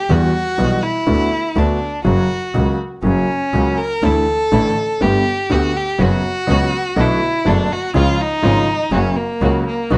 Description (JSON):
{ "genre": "tango", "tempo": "122 BPM", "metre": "4/4", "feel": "rubato", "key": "unclear", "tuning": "A4 = 439 Hz", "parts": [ { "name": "warm violin", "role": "second line", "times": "0.0-10.0 s", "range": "A#3 to A#4", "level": "-22 LUFS", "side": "equal", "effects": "none" }, { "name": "warm grand piano", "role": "accompaniment", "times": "0.1-10.0 s", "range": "F#1 to G4", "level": "-21 LUFS", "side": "equal", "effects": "none" }, { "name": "clear double bass", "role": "bass", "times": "0.1-10.0 s", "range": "F#1 to E2", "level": "-22 LUFS", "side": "equal", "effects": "none" }, { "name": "warm studio string section", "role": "stabs", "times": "4.0-10.0 s", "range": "G#3 to A4", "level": "-27 LUFS", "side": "equal", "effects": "none" } ], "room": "light reverb", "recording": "nothing above 10.5 kHz", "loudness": "-17 LUFS", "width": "mono", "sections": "0.0-10.0 A section", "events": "violin solo 0.0-10.0", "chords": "0.1 Emadd9; 1.1 Bm7/D; 2.1 F#; 4.0 Dsus2; 5.0 Gadd9; 6.0 F#sus4; 7.0 Bm7; 8.0 C#; 8.9 F#" }